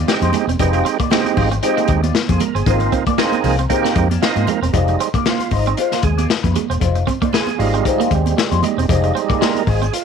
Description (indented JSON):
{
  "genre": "funk",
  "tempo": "116 BPM",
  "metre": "4/4",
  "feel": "swing 56% on 16ths",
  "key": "unclear",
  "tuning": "A4 = 441 Hz",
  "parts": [
    { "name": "electric guitar at the edge of break-up", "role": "accompaniment", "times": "0.0-10.0 s", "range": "Ab3 to D5", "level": "-24 LUFS", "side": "left 13 dB", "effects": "wah, analog chorus" },
    { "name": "vintage muted fingered electric bass", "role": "bass", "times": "0.0-9.9 s", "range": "E1 to Ab2", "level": "-18 LUFS", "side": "left 1 dB", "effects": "none" },
    { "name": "clean electric guitar", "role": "riff", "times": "0.1-10.0 s", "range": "Ab3 to C4", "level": "-24 LUFS", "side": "right 12 dB", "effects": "analog chorus" },
    { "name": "percussive tonewheel organ", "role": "stabs", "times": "0.1-10.0 s", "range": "G3 to Eb5", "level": "-20 LUFS", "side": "right 12 dB", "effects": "overdrive, fast rotary speaker" },
    { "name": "crunchy breakbeat drum kit", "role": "drums", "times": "0.1-10.0 s", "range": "hi-hat, kick drum, snare drum", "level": "-21 LUFS", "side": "left 5 dB", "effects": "none" },
    { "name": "congas", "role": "percussion", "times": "0.1-9.8 s", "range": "none", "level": "-26 LUFS", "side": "right 10 dB", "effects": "none" }
  ],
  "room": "light reverb, small room ambience",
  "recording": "1960s-style stereo with parts hard left and right",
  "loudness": "-14 LUFS",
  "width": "side -6 dB against mid",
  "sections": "0.0-4.7 A section; 4.7-10.0 B section",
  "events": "tonewheel organ fill 4.0-4.7; tonewheel organ solo 4.7-10.0",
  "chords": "0.0 Fm7",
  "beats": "0.08 | 0.59 1.11 1.63 2.15 | 2.67 3.18 3.70 4.22 | 4.74 5.26 5.78 6.29 | 6.81 7.33 7.85 8.37 | 8.89 9.41 9.93"
}